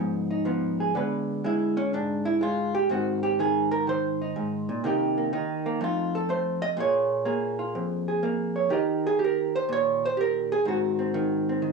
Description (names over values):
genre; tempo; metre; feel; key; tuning
solo jazz; 124 BPM; 4/4; swing 68% on 8ths; unclear; A4 = 440 Hz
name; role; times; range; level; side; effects
vintage hollow-body jazz guitar; solo; 0.0-11.7 s; F2 to Eb5; -24 LUFS; right 2 dB; none
room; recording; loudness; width
wet booth ambience, RT60 0.2 s; home recording on cassette, small room ambience; -24 LUFS; side -4 dB against mid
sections
0.0-11.7 A section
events
hollow-body jazz guitar solo 0.0-11.7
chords
0.0 Db9 (rootless); 0.9 Abdim7; 2.9 Abadd9; 4.8 Cm7; 5.8 F7; 6.8 Bbm7; 8.7 Eb; 10.7 Ab7